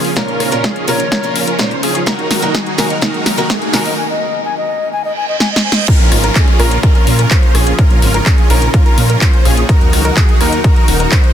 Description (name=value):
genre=EDM, festival progressive house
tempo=126 BPM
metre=4/4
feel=straight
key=Bb minor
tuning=A4 = 440 Hz
part: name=lush unison pad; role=sustained chords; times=0.0-11.3 s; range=Db3 to Gb4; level=-24 LUFS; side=equal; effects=chorus, sidechain pumping
part: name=warm grand piano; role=arpeggios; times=0.0-11.3 s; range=Ab4 to C5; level=-23 LUFS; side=right 1 dB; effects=sidechain pumping, low-pass filter, ping-pong delay
part: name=supersaw chords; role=riff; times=0.0-11.3 s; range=Db4 to C5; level=-19 LUFS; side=equal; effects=ensemble chorus, sidechain pumping, low-pass filter, ping-pong delay
part: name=wide detuned saw bass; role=bass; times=0.0-11.1 s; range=Eb1 to Bb2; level=-16 LUFS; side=equal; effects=chorus, sidechain pumping, high-pass filter
part: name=big-room dance drum kit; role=drums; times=0.0-11.3 s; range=crash cymbal, handclaps, hi-hat, rim click, snare drum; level=-18 LUFS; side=equal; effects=studio ambience
part: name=riser, reverse cymbal and downlifter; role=sound effects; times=1.5-9.7 s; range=none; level=-23 LUFS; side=right 1 dB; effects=none
part: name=picked acoustic archtop guitar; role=accompaniment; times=0.2-3.9 s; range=Bb2 to Bb4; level=-22 LUFS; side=right 1 dB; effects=sidechain pumping, ping-pong delay
part: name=electronic kick drum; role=drums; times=0.2-11.2 s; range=none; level=-11 LUFS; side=equal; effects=overdrive, high-pass filter on kick, studio ambience
part: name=breathy mellow concert flute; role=melody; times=0.9-5.9 s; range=Db5 to Ab5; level=-22 LUFS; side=left 4 dB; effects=ping-pong delay
room=light reverb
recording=dense, heavily limited modern master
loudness=-10 LUFS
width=side -10 dB against mid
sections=0.0-5.9 A section; 5.9-11.3 B section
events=build-up 0.0-5.9; drum fill 0.0-4.0, 5.4-5.9; filter sweep on analog synth pad 0.0-5.9; reverse cymbal 5.1-5.9; drop 5.9-11.3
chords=0.0 Bbm; 2.1 Ebm; 5.9 Bbm; 9.7 Ebm